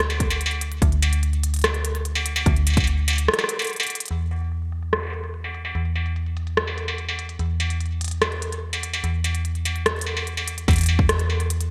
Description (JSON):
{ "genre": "IDM", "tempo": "146 BPM", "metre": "4/4", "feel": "straight", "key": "unclear", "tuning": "A4 = 443 Hz", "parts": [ { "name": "metallic FM bass", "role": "bass", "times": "0.0-11.7 s", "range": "D2 to E2", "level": "-26 LUFS", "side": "equal", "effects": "none" }, { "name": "industrial drum kit", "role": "drums", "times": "0.0-11.7 s", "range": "hi-hat, rim click, struck metal", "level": "-27 LUFS", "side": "equal", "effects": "low-pass filter on hats, low-pass filter on perc, low-pass filter on snare, low-pass filter on room, gated reverb" }, { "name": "electronic kick drum", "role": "drums", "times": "0.2-2.9, 10.7-11.1 s", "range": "none", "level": "-24 LUFS", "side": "equal", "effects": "none" } ], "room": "light reverb", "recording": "bright 1980s-style digital production", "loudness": "-23 LUFS", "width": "mono", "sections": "0.0-4.1 A section; 4.1-10.7 B section; 10.7-11.7 C section", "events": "break 3.3-4.1; drum fill 3.9; filter sweep on drum 4.1-10.7", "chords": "none" }